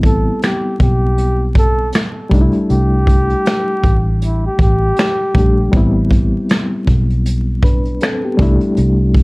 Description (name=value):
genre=lo-fi hip hop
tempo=79 BPM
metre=4/4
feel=swing 59% on 16ths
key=A minor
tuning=A4 = 436 Hz
part: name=reed electric piano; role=accompaniment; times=0.0-9.2 s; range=G3 to B4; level=-19 LUFS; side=left 1 dB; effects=fast tremolo, cassette tape, low-pass filter
part: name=vintage muted fingered electric bass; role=bass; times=0.0-9.2 s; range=A1 to C2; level=-16 LUFS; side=equal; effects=none
part: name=vintage brush drum kit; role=drums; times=0.0-9.2 s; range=finger snaps, hi-hat, kick drum, snare drum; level=-15 LUFS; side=equal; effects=none
part: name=mellow flugelhorn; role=melody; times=0.1-5.7 s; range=E4 to A4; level=-19 LUFS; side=equal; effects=low-pass filter, tape echo
room=light reverb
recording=dark, warm production, vinyl crackle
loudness=-12 LUFS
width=side -26 dB against mid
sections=0.0-9.2 A section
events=none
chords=0.0 Am9; 2.3 C69; 5.7 Am9; 8.4 C69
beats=0.41 1.18 1.93 | 2.69 3.45 4.21 4.97 | 5.73 6.49 7.25 8.01 | 8.77